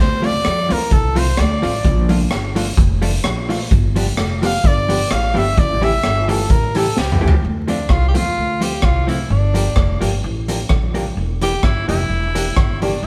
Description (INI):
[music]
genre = ska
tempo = 129 BPM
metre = 4/4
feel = swing 54% on 8ths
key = D minor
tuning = A4 = 440 Hz
[part]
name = clear trumpet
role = melody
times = 0.0-7.4 s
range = G4 to F5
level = -23 LUFS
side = equal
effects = none
[part]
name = upright bass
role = bass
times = 0.0-13.1 s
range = E1 to F2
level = -22 LUFS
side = equal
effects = none
[part]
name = vintage hollow-body jazz guitar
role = accompaniment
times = 0.2-12.9 s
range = E3 to G4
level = -24 LUFS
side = equal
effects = none
[part]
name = raw garage drum kit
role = drums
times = 0.2-12.9 s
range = hi-hat, kick drum, rim click, snare drum, toms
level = -21 LUFS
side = equal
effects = none
[part]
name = bright tenor saxophone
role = melody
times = 7.7-13.1 s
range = D4 to G4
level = -25 LUFS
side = equal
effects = none
[sound]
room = light reverb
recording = band playing live in one room, vinyl crackle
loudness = -17 LUFS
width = mono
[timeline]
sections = 0.0-7.4 A section; 7.4-13.1 B section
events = trumpet solo 0.0-7.4; drum fill 7.0-7.4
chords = 0.0 Dm7; 1.8 Bbmaj7; 3.7 G7; 5.6 A7; 7.4 Dm7; 9.3 Gm7; 11.2 Em7b5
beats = 0.45 0.92 1.38 | 1.85 2.31 2.78 3.25 | 3.71 4.18 4.64 5.11 | 5.57 6.04 6.50 6.97 | 7.44 7.90 8.37 8.83 | 9.30 9.77 10.23 10.70 | 11.17 11.63 12.10 12.56 | 13.03